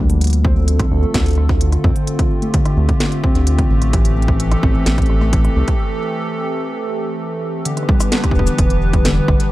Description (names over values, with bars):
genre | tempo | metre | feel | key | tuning
IDM | 129 BPM | 4/4 | straight | E phrygian | A4 = 441 Hz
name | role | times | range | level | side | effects
harp-like synth pluck | arpeggios | 0.0-9.4 s | D3 to C4 | -22 LUFS | left 2 dB | chorus, cassette tape, dub echo
round analog bass | bass | 0.0-9.4 s | E1 to F2 | -16 LUFS | equal | none
industrial drum kit | drums | 0.1-9.5 s | hi-hat, rim click, shaker, snare drum | -23 LUFS | equal | none
hollow soft pad | sustained chords | 0.2-9.5 s | D3 to B4 | -23 LUFS | right 1 dB | chorus
electronic kick drum | drums | 0.4-9.4 s | none | -17 LUFS | equal | none
room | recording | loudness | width
little or no reverb | dark, warm production | -14 LUFS | side -16 dB against mid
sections
0.0-7.7 A section; 7.7-9.5 B section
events
break 5.8-7.7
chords
0.2 Dm7; 3.9 Am7; 7.7 Em7